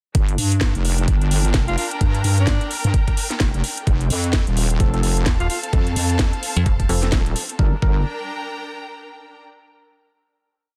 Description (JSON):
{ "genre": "bass house", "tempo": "129 BPM", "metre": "4/4", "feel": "swing 59% on 16ths", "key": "G minor", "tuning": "A4 = 440 Hz", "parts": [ { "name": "wobble bass", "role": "bass", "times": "0.1-8.0 s", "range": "Eb1 to G2", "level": "-22 LUFS", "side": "equal", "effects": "chorus, tube saturation, sidechain pumping" }, { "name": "electronic kick drum", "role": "drums", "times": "0.1-7.9 s", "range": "none", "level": "-22 LUFS", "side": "equal", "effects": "none" }, { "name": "garage drum kit", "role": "drums", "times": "0.1-7.6 s", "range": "hi-hat, snare drum", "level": "-27 LUFS", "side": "equal", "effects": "none" }, { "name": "clear studio string section", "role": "texture", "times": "0.1-9.4 s", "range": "C4 to Bb5", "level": "-33 LUFS", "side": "equal", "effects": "sidechain pumping" }, { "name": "clear alto saxophone", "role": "melody", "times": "1.7-5.6 s", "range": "D4 to F4", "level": "-31 LUFS", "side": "equal", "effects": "dub echo" }, { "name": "percussive organ stab", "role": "stabs", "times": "4.8-8.0 s", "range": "F3 to Bb4", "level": "-31 LUFS", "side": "equal", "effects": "chorus, sidechain pumping, dub echo" }, { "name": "metallic FM bass", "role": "bass", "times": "5.3-7.1 s", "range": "Eb1 to F2", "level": "-22 LUFS", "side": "equal", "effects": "tube saturation, sidechain pumping" } ], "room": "digital ambience", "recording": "dense, heavily limited modern master", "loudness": "-20 LUFS", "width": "mono", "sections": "0.1-7.6 drop; 7.6-9.5 final chord", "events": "drop 0.1-7.6", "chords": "0.1 Gm; 3.9 F; 7.6 Gm" }